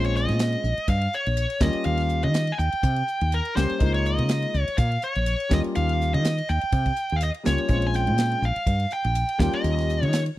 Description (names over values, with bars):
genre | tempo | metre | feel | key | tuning
electric jazz fusion | 123 BPM | 4/4 | swing 55% on 16ths | unclear | A4 = 441 Hz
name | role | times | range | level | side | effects
smooth overdriven lead guitar | melody | 0.0-10.2 s | Bb4 to Ab5 | -27 LUFS | equal | slapback echo
warm concert grand piano | accompaniment | 0.0-10.2 s | G3 to G4 | -28 LUFS | left 2 dB | none
woody fretless electric bass | bass | 0.0-10.3 s | Bb1 to Eb3 | -24 LUFS | equal | none
tight funk drum kit | drums | 0.0-10.4 s | hi-hat, kick drum, ride cymbal, snare drum | -26 LUFS | equal | none
room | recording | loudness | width
little or no reverb | dry, close 1970s-style studio recording | -21 LUFS | side -15 dB against mid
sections
0.0-10.4 A section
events
none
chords
0.0 Bbm9; 1.6 Eb7; 3.8 Db6; 5.5 Eb7; 7.7 Bbm9; 9.4 Eb7